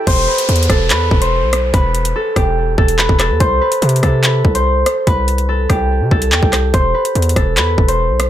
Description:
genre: hip hop, drill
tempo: 144 BPM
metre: 4/4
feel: half-time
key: E minor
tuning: A4 = 439 Hz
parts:
  - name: concert harp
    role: melody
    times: 0.0-8.3 s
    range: G4 to C5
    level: -16 LUFS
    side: equal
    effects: low-pass filter, ping-pong delay
  - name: swell and downlifter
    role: sound effects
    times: 0.0-3.4 s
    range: none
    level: -25 LUFS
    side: equal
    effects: none
  - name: hard-hitting 808-style bass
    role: bass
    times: 0.1-8.3 s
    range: E1 to C3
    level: -16 LUFS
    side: equal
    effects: none
  - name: drill drum kit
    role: drums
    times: 0.1-8.3 s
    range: crash cymbal, handclaps, hi-hat, kick drum, rim click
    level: -16 LUFS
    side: equal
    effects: none
room: little or no reverb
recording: none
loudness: -12 LUFS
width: side -11 dB against mid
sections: 0.1-8.3 A section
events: none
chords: 0.1 Em; 3.4 Cmaj7(no3); 6.7 Em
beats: | 0.07 0.49 0.90 1.32 | 1.74 2.15 2.57 2.99 | 3.40 3.82 4.24 4.65 | 5.07 5.49 5.90 6.32 | 6.74 7.15 7.57 7.99

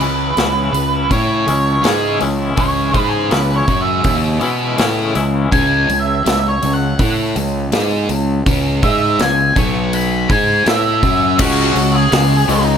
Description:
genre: quiet-loud alternative rock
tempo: 82 BPM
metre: 4/4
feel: straight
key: C# minor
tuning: A4 = 440 Hz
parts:
  - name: octave-fuzz lead guitar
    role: melody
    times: 0.0-12.8 s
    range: D#4 to C#6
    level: -18 LUFS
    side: right 1 dB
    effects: distortion
  - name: twangy electric guitar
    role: arpeggios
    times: 0.0-5.5 s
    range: C#3 to E4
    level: -23 LUFS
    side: left 6 dB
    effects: tremolo
  - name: sludgy distorted guitar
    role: riff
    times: 0.0-12.8 s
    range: B2 to B4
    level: -19 LUFS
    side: equal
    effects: overdrive
  - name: fuzz fingered electric bass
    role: bass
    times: 0.0-12.8 s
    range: B1 to B2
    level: -19 LUFS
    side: equal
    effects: overdrive
  - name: big rock drum kit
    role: drums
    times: 0.0-12.7 s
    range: crash cymbal, hi-hat, kick drum, snare drum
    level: -19 LUFS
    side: equal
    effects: none
  - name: high-gain distorted guitar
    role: riff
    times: 11.4-12.8 s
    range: C#3 to C#4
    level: -18 LUFS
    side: equal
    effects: distortion
room: small room ambience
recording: none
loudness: -13 LUFS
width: side -8 dB against mid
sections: 0.0-11.4 A section; 11.4-12.8 B section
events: lead electric guitar solo 0.0-11.4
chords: 0.0 C#m; 9.6 B5; 10.3 C#m; 11.4 C#5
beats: 0.36 1.10 1.84 | 2.57 3.31 4.05 4.78 | 5.52 6.25 6.99 7.72 | 8.46 9.19 9.93 10.66 | 11.39 12.13

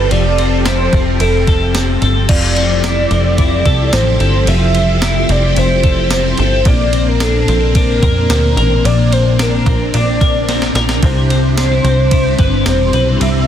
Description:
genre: dream pop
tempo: 110 BPM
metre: 4/4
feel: straight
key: unclear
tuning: A4 = 442 Hz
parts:
  - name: warm velvety synth lead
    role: melody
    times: 0.0-13.5 s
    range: A4 to E5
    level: -18 LUFS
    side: equal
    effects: chorus, digital delay
  - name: string machine, full ensemble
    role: sustained chords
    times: 0.0-13.5 s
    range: C3 to A4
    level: -19 LUFS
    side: right 1 dB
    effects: ensemble chorus
  - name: twelve-string electric guitar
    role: arpeggios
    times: 0.0-13.5 s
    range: Bb2 to B4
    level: -18 LUFS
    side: left 4 dB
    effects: lush chorus, digital delay
  - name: plucky analog bass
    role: bass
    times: 0.0-13.5 s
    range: E1 to F2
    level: -15 LUFS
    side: right 1 dB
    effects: none
  - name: crisp 8-bit digital drum machine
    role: drums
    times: 0.1-13.3 s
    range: crash cymbal, kick drum, ride cymbal, snare drum, tambourine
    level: -18 LUFS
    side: equal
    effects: none
room: light reverb, digital ambience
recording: dense, heavily limited modern master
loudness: -10 LUFS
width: side -10 dB against mid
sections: 0.0-2.3 A section; 2.3-13.5 B section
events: drum fill 10.5-11.0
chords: 0.0 Fmaj7; 6.7 Bbadd9; 11.0 Cmaj7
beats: | 0.11 0.66 1.20 1.75 | 2.29 2.84 3.38 3.93 | 4.47 5.02 5.57 6.11 | 6.66 7.20 7.75 8.29 | 8.84 9.38 9.93 10.47 | 11.02 11.57 12.11 12.66 | 13.20

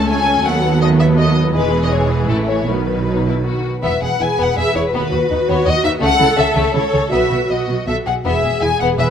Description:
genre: quick classical-period movement for string orchestra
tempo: 162 BPM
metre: 3/4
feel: rubato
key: E major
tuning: A4 = 440 Hz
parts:
  - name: warm symphonic violin section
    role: melody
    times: 0.0-9.1 s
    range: A4 to G#5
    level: -19 LUFS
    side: left 4 dB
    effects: none
  - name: rich studio violin section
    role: second line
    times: 0.0-9.1 s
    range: G#3 to B4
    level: -21 LUFS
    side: left 4 dB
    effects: none
  - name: warm symphonic viola section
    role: accompaniment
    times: 0.0-9.1 s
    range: D#3 to B4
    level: -21 LUFS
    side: right 2 dB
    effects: none
  - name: dark studio cello section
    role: bass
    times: 0.0-9.1 s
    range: C#2 to C#3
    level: -21 LUFS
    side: right 3 dB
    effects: none
  - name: rich studio double bass section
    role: bass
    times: 0.0-9.1 s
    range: E1 to D#2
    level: -21 LUFS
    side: right 3 dB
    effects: none
room: moderate concert hall reverb, RT60 2.5 s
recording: close, detailed microphones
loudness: -14 LUFS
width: side -8 dB against mid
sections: 0.0-3.8 A section; 3.8-9.1 B section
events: none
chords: 0.5 B7/D#; 1.5 E; 2.3 A; 2.7 B; 3.8 E; 4.9 B/D#; 6.0 A/C#; 7.1 B; 8.3 E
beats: 0.09 | 0.45 0.82 1.18 | 1.55 1.92 2.29 | 2.68 3.07 3.46 | 3.84 4.21 4.58 | 4.94 5.30 5.67 | 6.03 6.38 6.75 | 7.12 7.50 7.88 | 8.25 8.62 8.99

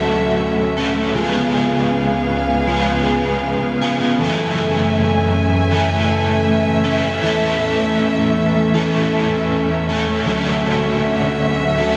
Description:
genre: dream pop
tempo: 79 BPM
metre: 4/4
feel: straight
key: D lydian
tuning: A4 = 438 Hz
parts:
  - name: overdriven semi-hollow guitar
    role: accompaniment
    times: 0.0-12.0 s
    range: F#2 to A4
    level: -22 LUFS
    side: equal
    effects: tremolo, ensemble chorus
  - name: warm studio string section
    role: sustained chords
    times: 0.0-12.0 s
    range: C#2 to G#5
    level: -22 LUFS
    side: equal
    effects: none
  - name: mellow electric guitar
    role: arpeggios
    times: 0.0-12.0 s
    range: E3 to A4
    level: -22 LUFS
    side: equal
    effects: analog chorus, delay
room: wet huge ambient reverb, RT60 5.1 s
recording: none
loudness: -17 LUFS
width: mono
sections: 0.0-12.0 A section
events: none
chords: 0.0 Dmaj7; 1.2 C#7; 4.2 F#m7; 7.2 A/E; 10.3 Dmaj7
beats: 0.40 | 1.16 1.92 2.68 3.44 | 4.20 4.96 5.71 6.47 | 7.23 7.99 8.75 9.51 | 10.27 11.03 11.79

